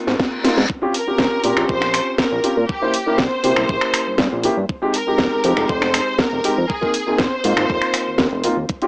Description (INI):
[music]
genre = nu-disco, nu disco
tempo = 120 BPM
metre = 4/4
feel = straight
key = unclear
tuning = A4 = 440 Hz
[part]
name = dark grand piano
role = accompaniment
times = 0.0-8.9 s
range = Ab3 to C5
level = -21 LUFS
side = equal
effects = sidechain pumping
[part]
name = reverse cymbal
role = sound effects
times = 0.0-0.7 s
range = none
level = -25 LUFS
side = left 1 dB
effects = none
[part]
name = fat analog bass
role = bass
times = 0.1-8.7 s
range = F1 to C3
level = -21 LUFS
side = equal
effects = none
[part]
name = house drum kit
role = drums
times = 0.1-8.9 s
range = finger snaps, hi-hat, snare drum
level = -20 LUFS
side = equal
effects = overdrive, cassette tape
[part]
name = electronic kick drum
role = drums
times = 0.2-8.8 s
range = none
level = -25 LUFS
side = equal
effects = cassette tape
[part]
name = clear studio violin section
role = melody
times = 0.9-8.4 s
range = G4 to C5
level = -22 LUFS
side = equal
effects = cassette tape, analog delay
[sound]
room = moderate booth ambience, RT60 0.2 s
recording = home recording on cassette, small speaker sound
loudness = -16 LUFS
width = side -28 dB against mid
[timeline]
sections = 0.0-8.9 A section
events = drum fill 0.0-0.7; reverse cymbal 0.0-0.7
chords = 0.0 Ab69; 0.7 Bbm69; 2.7 C7b9; 4.7 Fm9; 6.7 Ab69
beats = 0.19 | 0.69 1.19 1.69 2.19 | 2.69 3.19 3.69 4.19 | 4.69 5.19 5.69 6.19 | 6.69 7.19 7.69 8.19 | 8.69